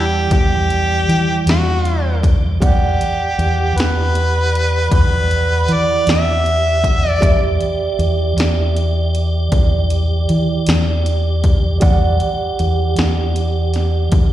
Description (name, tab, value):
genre	slow blues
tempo	52 BPM (dotted quarters)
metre	12/8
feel	straight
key	E minor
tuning	A4 = 440 Hz
part	warm harmonica	melody	0.0-7.6 s	F#4 to E5	-18 LUFS	equal	overdrive, slapback echo, tape echo
part	overdriven tine electric piano	accompaniment	0.0-14.3 s	G3 to F#5	-26 LUFS	right 6 dB	fast tremolo, slapback echo
part	tonewheel organ	sustained chords	0.0-14.3 s	G3 to F#5	-25 LUFS	right 2 dB	overdrive, chorus vibrato, wide subtle chorus
part	fingered electric bass	bass	0.0-14.3 s	E2 to E3	-16 LUFS	equal	none
part	punchy analog drum machine	drums	0.3-14.3 s	hi-hat, kick drum, snare drum	-17 LUFS	equal	none
room	digital ambience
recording	live gig heard through the venue's PA, recital hall reverb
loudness	-13 LUFS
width	side -13 dB against mid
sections	0.0-14.3 A section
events	none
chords	0.0 Em9